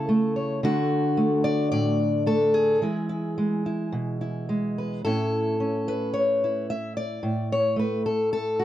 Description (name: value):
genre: folk, solo fingerstyle acoustic guitar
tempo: 109 BPM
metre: 4/4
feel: rubato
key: A major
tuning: A4 = 440 Hz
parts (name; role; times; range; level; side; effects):
- fingerpicked steel-string acoustic guitar; solo; 0.0-8.6 s; A2 to E5; -22 LUFS; equal; none
room: light reverb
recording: dry, close 1970s-style studio recording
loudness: -22 LUFS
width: side -12 dB against mid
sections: 0.0-5.0 A section; 5.0-8.6 B section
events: none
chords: 0.0 A/C#; 0.6 D; 2.8 E; 5.0 Aadd9; 7.2 N.C.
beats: 0.10 | 0.63 1.17 1.71 2.26 | 2.81 3.36 3.92 4.48 | 5.04 5.59 6.14 6.69 | 7.24 7.77 8.31